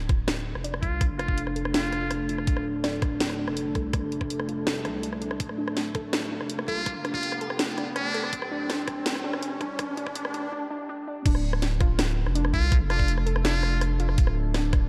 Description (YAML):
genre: half-time drum and bass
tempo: 164 BPM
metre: 4/4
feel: half-time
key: D minor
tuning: A4 = 438 Hz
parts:
  - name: deep dark ambient pad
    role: sustained chords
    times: 0.5-14.9 s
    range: A3 to D5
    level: -37 LUFS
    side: equal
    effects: chorus, built-in reverb, sidechain pumping
  - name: warbly dusty pluck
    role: arpeggios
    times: 0.0-14.7 s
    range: D4 to D5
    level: -38 LUFS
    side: equal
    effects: chorus, cassette tape, delay
  - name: saturated sub bass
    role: bass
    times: 0.0-14.9 s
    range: D1 to C2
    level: -32 LUFS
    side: equal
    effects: tube saturation
  - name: riser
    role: sound effects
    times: 2.7-10.5 s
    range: none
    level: -42 LUFS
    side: equal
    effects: none
  - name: drum and bass drum kit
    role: drums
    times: 0.1-14.8 s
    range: crash cymbal, hi-hat, rim click, snare drum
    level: -33 LUFS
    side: equal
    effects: none
  - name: electronic kick drum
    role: drums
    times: 0.1-14.8 s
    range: none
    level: -27 LUFS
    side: equal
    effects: none
  - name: trumpet with metal mute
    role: melody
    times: 0.8-2.1, 6.7-8.3, 12.5-13.8 s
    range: D4 to F4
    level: -34 LUFS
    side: equal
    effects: low-pass filter, delay
room: moderate lush hall reverb, RT60 2.1 s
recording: dark, warm production, high-pass filter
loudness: -27 LUFS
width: mono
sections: 0.0-11.3 A section; 11.3-14.9 B section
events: build-up 0.0-11.3; filter sweep on synth pluck 0.0-11.3; riser 2.8-10.5; break 10.5-11.3; drop 11.3-14.9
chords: 0.0 D5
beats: 0.28 0.65 | 1.01 1.38 1.74 2.11 | 2.48 2.84 3.21 3.57 | 3.94 4.30 4.67 5.04 | 5.40 5.77 6.13 6.50 | 6.87 7.23 7.60 7.96 | 8.33 8.69 9.06 9.43 | 9.79 10.16 10.52 10.89 | 11.26 11.62 11.99 12.35 | 12.72 13.08 13.45 13.82 | 14.18 14.55